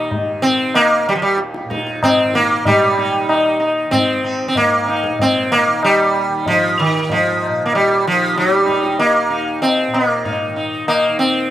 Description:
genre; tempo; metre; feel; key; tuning
indian classical, Hindustani; 95 BPM; 4/4; straight; Eb raga bhupali; A4 = 440 Hz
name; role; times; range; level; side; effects
sitar; melody; 0.0-11.5 s; Eb3 to Eb4; -15 LUFS; right 1 dB; slapback echo
tanpura; drone; 0.0-11.5 s; Eb2 to Eb3; -28 LUFS; equal; none
tabla; percussion; 0.1-11.1 s; none; -20 LUFS; left 2 dB; none
room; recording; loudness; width
little or no reverb; recorded outdoors, with no room sound; -13 LUFS; side -12 dB against mid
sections
0.0-2.7 A section; 2.7-11.5 B section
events
none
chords
none

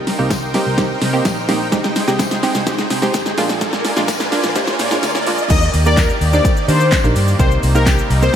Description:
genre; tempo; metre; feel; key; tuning
dance-pop; 127 BPM; 4/4; straight; Eb major; A4 = 439 Hz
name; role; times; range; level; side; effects
analog pluck; accompaniment; 0.0-8.4 s; Ab3 to C5; -21 LUFS; right 2 dB; chorus, sidechain pumping
supersaw pad; sustained chords; 0.0-8.4 s; C3 to Ab5; -22 LUFS; right 1 dB; sidechain pumping
vintage muted fingered electric bass; bass; 0.0-8.3 s; G1 to Eb3; -19 LUFS; equal; sidechain pumping
riser; sound effects; 1.4-5.5 s; none; -26 LUFS; equal; none
pop drum kit; drums; 0.1-8.4 s; crash cymbal, handclaps, hi-hat, kick drum, shaker, snare drum; -18 LUFS; equal; overdrive
tambourine; percussion; 0.1-8.2 s; none; -34 LUFS; left 6 dB; none
soft supersaw; melody; 5.5-8.3 s; G4 to Eb5; -19 LUFS; left 3 dB; sidechain pumping, ping-pong delay
room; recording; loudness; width
moderate huge ambient reverb, RT60 4.7 s; dreamy mix soaked in reverb, high-pass filter; -13 LUFS; side -9 dB against mid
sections
0.0-5.5 A section; 5.5-8.4 B section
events
build-up 0.0-5.5; drum fill 0.0-5.5; filter sweep 0.0-5.5; riser 1.4-5.5; drop 5.5-8.4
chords
0.0 Cm7; 1.7 Abmaj7/C; 3.4 Bb7; 5.5 Ebmaj7; 7.4 Cm7

